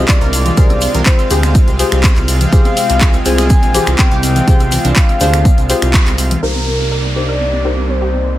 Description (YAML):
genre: progressive house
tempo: 123 BPM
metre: 4/4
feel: straight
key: unclear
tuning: A4 = 436 Hz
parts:
  - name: supersaw pad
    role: sustained chords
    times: 0.0-8.4 s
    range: C3 to F5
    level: -22 LUFS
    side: right 1 dB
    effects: sidechain pumping, low-pass filter
  - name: glassy wavetable pluck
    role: arpeggios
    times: 0.0-8.3 s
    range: C4 to Bb4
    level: -23 LUFS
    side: right 2 dB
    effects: chorus, sidechain pumping, digital delay
  - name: deep mellow chord stab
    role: stabs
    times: 0.0-8.3 s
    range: Eb4 to C5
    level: -21 LUFS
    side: left 5 dB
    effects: chorus, sidechain pumping, digital delay
  - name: fat analog bass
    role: bass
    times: 0.0-8.4 s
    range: Bb1 to D2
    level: -16 LUFS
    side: equal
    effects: tube saturation, sidechain pumping
  - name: soft octave-layered synth lead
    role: melody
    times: 0.1-8.4 s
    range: Bb4 to Ab5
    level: -20 LUFS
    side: left 2 dB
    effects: chorus, sidechain pumping, digital delay
  - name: electronic kick drum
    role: drums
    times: 0.1-6.0 s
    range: none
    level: -10 LUFS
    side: equal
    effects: overdrive
  - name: house drum kit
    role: drums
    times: 0.1-6.4 s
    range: finger snaps, handclaps, hi-hat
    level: -18 LUFS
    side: equal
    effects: low-pass filter on snare, sidechain pumping on hats, low-pass filter on hats
  - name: congas and woodblock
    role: percussion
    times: 0.1-6.4 s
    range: none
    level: -25 LUFS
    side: left 2 dB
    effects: sidechain pumping on perc
  - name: egg shaker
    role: percussion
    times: 0.1-6.4 s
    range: none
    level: -27 LUFS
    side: left 3 dB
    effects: none
  - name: downlifter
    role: sound effects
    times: 6.4-8.4 s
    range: none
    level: -23 LUFS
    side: equal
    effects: none
room: light reverb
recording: none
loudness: -10 LUFS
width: side -14 dB against mid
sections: 0.0-6.4 A section; 6.4-8.4 B section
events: drop 0.0-6.4; band accent 5.9; filter sweep on supersaw synth 6.4-8.4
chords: 0.0 Fmadd9; 6.4 Cm7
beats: 0.09 | 0.57 1.06 1.55 2.04 | 2.52 3.01 3.50 3.99 | 4.48 4.96 5.45 5.94 | 6.43 6.92 7.40 7.89 | 8.38